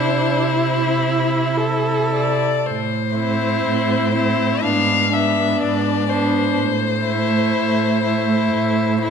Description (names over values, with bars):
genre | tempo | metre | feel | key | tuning
classical, slow romantic movement for string quartet | 51-63 BPM | 4/4 | rubato | A minor | A4 = 440 Hz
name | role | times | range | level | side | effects
rich violin | melody | 0.0-9.1 s | C5 to E#5 | -22 LUFS | left 9 dB | none
clear violin | second line | 0.0-9.1 s | D4 to E4 | -22 LUFS | left 3 dB | none
warm viola | accompaniment | 0.0-9.1 s | A3 to A4 | -23 LUFS | right 3 dB | none
warm cello | bass | 0.0-9.1 s | G#2 to C3 | -22 LUFS | right 5 dB | none
room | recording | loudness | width
moderate scoring stage reverb, RT60 1.4 s | none | -16 LUFS | side -6 dB against mid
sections
0.0-2.7 A section; 2.7-9.1 B section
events
none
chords
0.0 C; 2.7 Am; 4.6 G#dim7; 6.6 Am